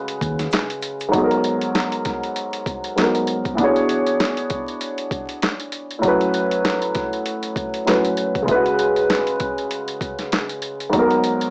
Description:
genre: hip hop, boom-bap hip-hop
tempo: 98 BPM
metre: 4/4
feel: swing 57% on 16ths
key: unclear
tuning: A4 = 440 Hz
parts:
  - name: dark upright piano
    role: accompaniment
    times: 0.0-11.5 s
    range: G#2 to C#5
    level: -19 LUFS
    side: equal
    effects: cassette tape, high-pass filter, low-pass filter
  - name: boom bap sampler-style drum kit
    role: drums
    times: 0.1-11.5 s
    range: handclaps, hi-hat, kick drum, snare drum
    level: -24 LUFS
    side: equal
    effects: none
  - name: fingered electric bass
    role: bass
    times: 0.2-0.5 s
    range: D#2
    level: -25 LUFS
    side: equal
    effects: tube saturation
  - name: egg shaker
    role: percussion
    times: 0.2-1.1 s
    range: none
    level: -48 LUFS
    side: left 1 dB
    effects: none
room: light reverb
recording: home recording on cassette, vinyl crackle, small speaker sound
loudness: -18 LUFS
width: side -35 dB against mid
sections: 0.0-1.1 A section; 1.1-10.9 B section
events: none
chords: 0.0 C#7sus4; 1.1 G#m9; 3.6 E13; 6.0 A69; 8.5 C#7sus4; 10.9 G#m9

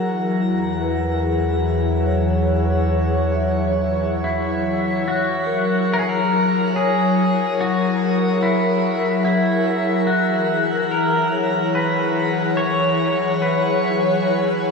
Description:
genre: ambient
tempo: 71 BPM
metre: 3/4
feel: straight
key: F# mixolydian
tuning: A4 = 440 Hz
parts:
  - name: airy breathy pad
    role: sustained chords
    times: 0.0-14.7 s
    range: E3 to F#5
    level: -20 LUFS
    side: left 1 dB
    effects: chorus
  - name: deep rumbling drone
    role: bass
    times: 0.6-5.0 s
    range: E2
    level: -23 LUFS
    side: equal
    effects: built-in reverb
  - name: organ-like drone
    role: drone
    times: 0.0-14.7 s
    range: F#3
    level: -31 LUFS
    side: right 5 dB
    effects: none
  - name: glass harmonica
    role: texture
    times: 0.0-5.1 s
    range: F#5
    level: -33 LUFS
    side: left 4 dB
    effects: none
  - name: vibraphone with soft mallets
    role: arpeggios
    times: 0.4-14.7 s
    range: E4 to F#5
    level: -26 LUFS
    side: left 2 dB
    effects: diffuse ambient delay
  - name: pedal steel guitar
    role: melody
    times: 4.2-14.7 s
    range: E4 to C#5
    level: -21 LUFS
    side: left 1 dB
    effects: diffuse ambient delay
room: wet shimmer reverb, RT60 7.5 s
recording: none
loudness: -17 LUFS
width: side -4 dB against mid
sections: 0.0-5.0 A section; 5.0-14.7 B section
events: none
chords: 0.0 E6; 5.0 F#7; 10.1 E6

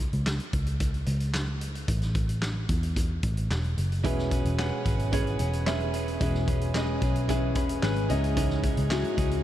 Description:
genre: piano-driven pop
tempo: 111 BPM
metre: 4/4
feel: straight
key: E major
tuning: A4 = 439 Hz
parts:
  - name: vintage muted picked electric bass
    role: bass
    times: 0.0-9.4 s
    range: E1 to E2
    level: -28 LUFS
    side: equal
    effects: none
  - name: loose indie drum kit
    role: drums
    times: 0.1-9.4 s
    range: handclaps, hi-hat, kick drum, snare drum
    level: -30 LUFS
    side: equal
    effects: none
  - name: clear baby grand piano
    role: accompaniment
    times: 4.0-9.4 s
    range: G#2 to B5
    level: -30 LUFS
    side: left 3 dB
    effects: wide subtle chorus
  - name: direct-recorded clean electric guitar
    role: riff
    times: 4.0-9.4 s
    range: C#3 to B4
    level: -32 LUFS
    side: right 8 dB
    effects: none
room: light reverb, small room ambience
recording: none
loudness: -25 LUFS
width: side -12 dB against mid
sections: 0.0-9.4 A section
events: grand piano fill 7.3-8.4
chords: 0.0 N.C.; 1.9 A5; 4.0 E6; 8.1 C#madd9

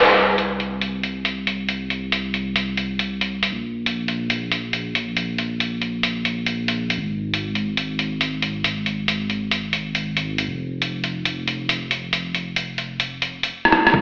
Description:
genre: future garage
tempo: 138 BPM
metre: 4/4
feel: swing 66% on 16ths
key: unclear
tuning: A4 = 441 Hz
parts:
  - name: dark detuned saw bass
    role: bass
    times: 0.0-14.0 s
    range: F1 to C2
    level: -26 LUFS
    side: equal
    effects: none
  - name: lo-fi sampler-style drum kit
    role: drums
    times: 0.4-13.9 s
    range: hi-hat, rim click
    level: -19 LUFS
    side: equal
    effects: low-pass filter on hats, low-pass filter on snare, low-pass filter on perc, low-pass filter on room
  - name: electronic kick drum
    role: drums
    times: 13.9-14.0 s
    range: none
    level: -17 LUFS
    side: equal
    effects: none
room: wet recital hall reverb, RT60 1.5 s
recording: played on a big sound system in a bare room, stone room reverb, AM radio sound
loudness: -20 LUFS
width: side -39 dB against mid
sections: 0.0-13.9 A section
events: drum fill 13.6-13.9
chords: none

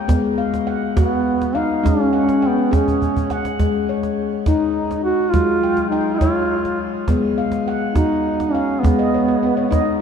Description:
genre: world meditative, meditative tuned percussion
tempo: 68 BPM (dotted quarters)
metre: 6/8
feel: straight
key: unclear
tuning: A4 = 441 Hz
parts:
  - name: handpan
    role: arpeggios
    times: 0.0-10.0 s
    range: F#3 to G5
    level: -20 LUFS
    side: left 4 dB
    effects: shimmer reverb
  - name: cajon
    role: percussion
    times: 0.1-9.9 s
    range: none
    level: -22 LUFS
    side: right 2 dB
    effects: none
  - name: dark duduk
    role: melody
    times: 1.0-10.0 s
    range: B3 to F#4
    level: -20 LUFS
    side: right 2 dB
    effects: shimmer reverb, ping-pong delay
room: wet concert hall reverb, RT60 2.0 s, studio ambience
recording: dark, warm production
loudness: -16 LUFS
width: side -7 dB against mid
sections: 0.0-10.0 A section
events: drum fill 2.9-3.6; handpan fill 9.0-10.0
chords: 0.1 B5/G#; 1.8 C#/G#; 3.6 G#5; 5.3 F#5; 7.1 B/G#; 8.8 G#m

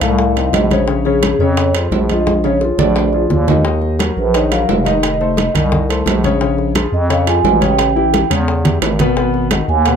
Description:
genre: Afro-Cuban jazz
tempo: 174 BPM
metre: 4/4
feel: straight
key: Bb minor, Eb minor from 3.6 s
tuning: A4 = 440 Hz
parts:
  - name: vibraphone with soft mallets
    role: melody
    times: 0.0-10.0 s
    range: Ab4 to Ab5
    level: -18 LUFS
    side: right 3 dB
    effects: none
  - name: warm grand piano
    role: accompaniment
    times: 0.0-10.0 s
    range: A2 to Eb5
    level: -18 LUFS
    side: left 5 dB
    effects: none
  - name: growling FM bass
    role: bass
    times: 0.0-10.0 s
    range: F1 to F2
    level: -17 LUFS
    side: right 1 dB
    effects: none
  - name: congas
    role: percussion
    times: 0.0-10.0 s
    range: none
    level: -19 LUFS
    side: right 1 dB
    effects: none
  - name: timbales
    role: percussion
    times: 0.0-10.0 s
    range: none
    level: -21 LUFS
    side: right 7 dB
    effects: none
  - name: bongos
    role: percussion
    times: 0.2-10.0 s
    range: none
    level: -25 LUFS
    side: left 6 dB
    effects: none
room: light reverb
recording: close, detailed microphones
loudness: -12 LUFS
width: side -7 dB against mid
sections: 0.0-3.6 A section; 3.6-10.0 B section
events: drum fill 2.3-3.6, 8.3-9.2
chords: 0.0 F7; 0.9 Bbm7; 3.0 Bb7; 3.6 Ebm; 5.0 F7; 6.4 Bbm7; 7.8 A9; 9.2 Abm7

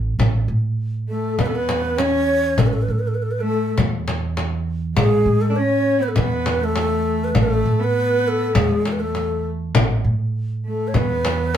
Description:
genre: Arabic maqam ensemble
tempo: 100 BPM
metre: 4/4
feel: straight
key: A maqam ajam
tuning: A4 = 439 Hz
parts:
  - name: upright bass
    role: bass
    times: 0.0-11.6 s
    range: A1 to A2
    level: -22 LUFS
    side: right 2 dB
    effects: none
  - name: frame drum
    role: percussion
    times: 0.2-11.6 s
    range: none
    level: -21 LUFS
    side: left 2 dB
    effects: none
  - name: breathy bright low ney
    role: melody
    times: 1.1-11.6 s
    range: G#4 to C#5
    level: -22 LUFS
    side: equal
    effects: none
  - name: warm cello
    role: second line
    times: 1.1-11.6 s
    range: G#3 to D4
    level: -24 LUFS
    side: equal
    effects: none
room: moderate studio ambience, RT60 0.5 s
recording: band playing live in one room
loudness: -18 LUFS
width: side -9 dB against mid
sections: 0.2-11.6 A section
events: none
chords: none

